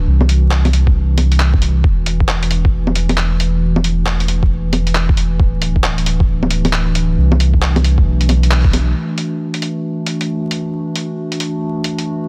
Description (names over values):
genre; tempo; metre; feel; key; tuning
future garage; 135 BPM; 4/4; swing 63% on 16ths; unclear; A4 = 440 Hz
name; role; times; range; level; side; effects
warbly tape-like pad; sustained chords; 0.0-12.3 s; E3 to F#4; -23 LUFS; equal; chorus, built-in reverb, vintage 12-bit sampler grit, sidechain pumping
warm sub bass; bass; 0.0-8.9 s; D1 to C2; -17 LUFS; equal; tube saturation
lo-fi sampler-style drum kit; drums; 0.2-12.1 s; bongos, handclaps, hi-hat; -22 LUFS; equal; none
electronic kick drum; drums; 0.9-8.7 s; none; -16 LUFS; equal; none
room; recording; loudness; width
little or no reverb; dense, heavily limited modern master, vinyl crackle; -15 LUFS; mono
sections
0.0-9.0 A section; 9.0-12.3 B section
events
band accent 8.5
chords
0.1 C; 1.8 E9sus4; 5.4 D; 7.2 C; 8.1 Bm7; 9.0 E9sus4